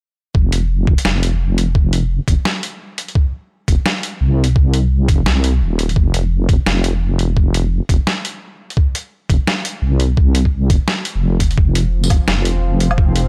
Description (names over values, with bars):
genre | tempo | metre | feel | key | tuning
half-time drum and bass | 171 BPM | 4/4 | swing 60% on 16ths, half-time | unclear | A4 = 440 Hz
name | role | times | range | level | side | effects
deep soft wobble bass | bass | 0.3-13.3 s | Eb1 to C2 | -18 LUFS | equal | chorus
electronic kick drum | drums | 0.3-13.1 s | none | -16 LUFS | equal | none
boom bap sampler-style drum kit | drums | 0.5-13.2 s | hi-hat, snare drum, tambourine, woodblock | -23 LUFS | equal | none
bowed-like drone | sustained chords | 11.9-13.3 s | F3 to F5 | -29 LUFS | equal | built-in reverb, sidechain pumping
room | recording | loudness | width
digital ambience | dry, gritty hardware recording | -16 LUFS | mono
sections
0.3-13.3 A section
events
none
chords
0.3 F5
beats
| 0.35 0.70 1.05 1.40 | 1.75 2.10 2.46 2.81 | 3.16 3.51 3.86 4.21 | 4.56 4.91 5.26 5.61 | 5.96 6.32 6.67 7.02 | 7.37 7.72 8.07 8.42 | 8.77 9.12 9.47 9.82 | 10.18 10.53 10.88 11.23 | 11.58 11.93 12.28 12.63 | 12.98